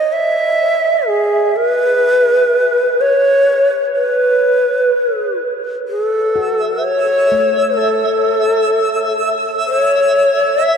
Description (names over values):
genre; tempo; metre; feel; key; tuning
ambient; free time; none; none; unclear; A4 = 439 Hz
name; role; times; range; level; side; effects
breathy bright long shakuhachi; melody; 0.0-10.8 s; G#4 to E5; -12 LUFS; equal; tape echo
twinkling granular texture; texture; 6.4-10.8 s; E5; -19 LUFS; equal; built-in reverb
handpan; arpeggios; 6.4-10.8 s; A3 to F#4; -30 LUFS; equal; tape echo
room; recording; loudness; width
wet huge ambient reverb, RT60 8.2 s; dark, warm production; -12 LUFS; side -7 dB against mid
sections
0.0-5.9 A section; 5.9-10.8 B section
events
none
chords
0.0 N.C.; 5.9 A6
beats
free time